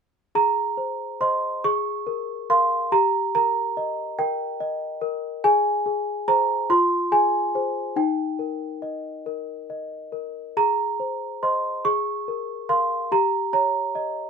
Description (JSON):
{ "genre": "classical, lullaby for celesta", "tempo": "47 BPM (dotted quarters)", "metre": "6/8", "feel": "rubato", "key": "Ab major", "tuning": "A4 = 440 Hz", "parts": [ { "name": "worn celesta", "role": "solo", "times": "0.3-14.3 s", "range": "Eb4 to Db6", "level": "-21 LUFS", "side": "right 1 dB", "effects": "none" } ], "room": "light reverb", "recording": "minimal, uncompressed stereo recording", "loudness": "-21 LUFS", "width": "side -6 dB against mid", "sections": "0.4-14.3 A section", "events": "none", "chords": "0.4 Ab; 1.6 Bbm7/Ab; 2.9 Eb/G; 5.4 Ab; 6.7 Fm; 8.0 Eb; 10.6 Ab; 11.9 Bbm7/Ab; 13.1 Eb7/G" }